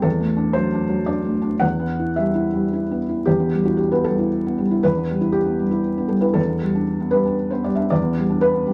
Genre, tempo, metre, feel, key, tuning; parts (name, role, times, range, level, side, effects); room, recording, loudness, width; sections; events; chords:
neoclassical minimalist piano; 108-121 BPM; 3/4; rubato; E minor; A4 = 440 Hz
felt-muted upright piano; solo; 0.0-8.7 s; E2 to F#5; -20 LUFS; equal
wet studio reverb, RT60 0.5 s; vinyl crackle; -20 LUFS; mono
0.0-3.3 A section; 3.3-8.7 B section
0.1 D/E; 1.6 Em; 6.4 Gadd9/E